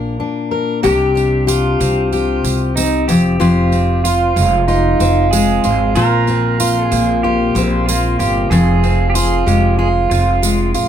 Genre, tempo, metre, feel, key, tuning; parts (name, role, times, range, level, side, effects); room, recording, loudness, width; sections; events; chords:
acoustic pop; 94 BPM; 4/4; swing 60% on 16ths; A4 = 440 Hz
fingerpicked steel-string acoustic guitar; accompaniment; 0.0-10.9 s; F2 to Bb4; -14 LUFS; left 1 dB
upright bass; bass; 0.0-10.9 s; F1 to C2; -18 LUFS; right 1 dB
pedal steel guitar; second line; 0.8-10.7 s; Eb4 to Bb4; -20 LUFS; right 2 dB
tambourine; percussion; 0.8-10.9 s; -25 LUFS; right 8 dB
little or no reverb; close, detailed microphones; -12 LUFS; side -9 dB against mid
0.8-10.9 A section
0.0 Bb; 0.8 Csus2; 3.1 Fm7; 6.0 Bbsus2; 8.5 Fm